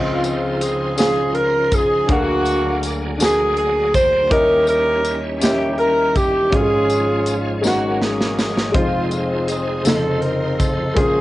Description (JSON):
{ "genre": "slow gospel", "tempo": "54 BPM (dotted quarters)", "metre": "6/8", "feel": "straight", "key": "Db major", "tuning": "A4 = 442 Hz", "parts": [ { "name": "warm saxophone section", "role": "melody", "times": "0.0-11.2 s", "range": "Ab3 to C5", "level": "-18 LUFS", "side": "equal", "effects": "none" }, { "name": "warm baby grand piano", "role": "accompaniment", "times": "0.0-11.2 s", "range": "F1 to Ab5", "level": "-22 LUFS", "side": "left 2 dB", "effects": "cassette tape" }, { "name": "bright tonewheel organ", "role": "sustained chords", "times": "0.0-11.2 s", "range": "D2 to C5", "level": "-27 LUFS", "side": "right 2 dB", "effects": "slow rotary speaker, chorus vibrato, cassette tape" }, { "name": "crisp fusion drum kit", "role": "drums", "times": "0.2-11.1 s", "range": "hi-hat, kick drum, snare drum", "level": "-21 LUFS", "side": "equal", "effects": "cassette tape" }, { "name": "tambourine", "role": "percussion", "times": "0.2-10.9 s", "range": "none", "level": "-31 LUFS", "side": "left 6 dB", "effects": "none" } ], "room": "moderate booth ambience, RT60 0.2 s", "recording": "home recording on cassette, nothing above 10.9 kHz", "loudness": "-15 LUFS", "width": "side -16 dB against mid", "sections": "0.0-11.2 A section", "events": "drum fill 7.6-8.7", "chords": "0.0 Dbmaj9; 2.1 Bb7b13/D; 4.3 Eb7b9; 6.5 Db/Ab; 7.6 Ab9sus4; 8.7 Fm7; 9.9 F5" }